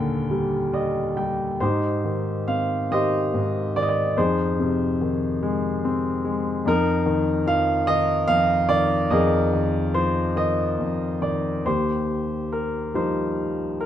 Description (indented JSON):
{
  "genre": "classical, lyrical solo piano",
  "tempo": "48 BPM (dotted quarters)",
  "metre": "6/8",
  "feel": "uneven beats, rubato",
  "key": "Eb major",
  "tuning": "A4 = 435 Hz",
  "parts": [
    { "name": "warm concert grand piano", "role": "solo", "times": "0.0-13.9 s", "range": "Eb2 to G5", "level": "-20 LUFS", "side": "equal", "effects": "none" }
  ],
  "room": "moderate recital hall reverb, RT60 1.6 s",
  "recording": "close, detailed microphones",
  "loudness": "-20 LUFS",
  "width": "side -10 dB against mid",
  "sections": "0.0-11.7 A section; 11.7-13.9 B section",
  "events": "grand piano fill 0.3-1.6",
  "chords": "0.0 Ebmaj7; 1.6 Abmaj7; 4.2 Fm7; 6.7 Bb7sus4/F; 11.7 Ebadd9"
}